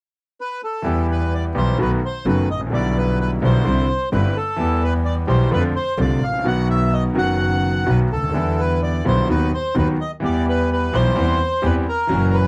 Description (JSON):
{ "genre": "tango", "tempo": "128 BPM", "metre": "4/4", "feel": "rubato", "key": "E minor", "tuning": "A4 = 440 Hz", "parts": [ { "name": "bandoneon", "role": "melody", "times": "0.4-12.5 s", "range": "A4 to F#5", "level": "-26 LUFS", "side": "equal", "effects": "none" }, { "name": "bright concert grand piano", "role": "accompaniment", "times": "0.8-12.5 s", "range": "F#1 to G4", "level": "-23 LUFS", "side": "equal", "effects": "none" }, { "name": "clear double bass", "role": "bass", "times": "0.8-12.5 s", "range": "F#1 to F2", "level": "-23 LUFS", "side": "equal", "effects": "none" } ], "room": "light reverb", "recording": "dry, close 1970s-style studio recording", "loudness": "-19 LUFS", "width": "mono", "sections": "0.9-12.5 A section", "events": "none", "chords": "0.0 N.C.; 0.9 Em; 1.8 B7; 2.7 G6/B; 3.7 Cadd9; 4.6 Em; 5.5 F6; 6.5 B; 8.4 Em7; 9.3 B/D#; 10.2 Em; 11.2 C/E" }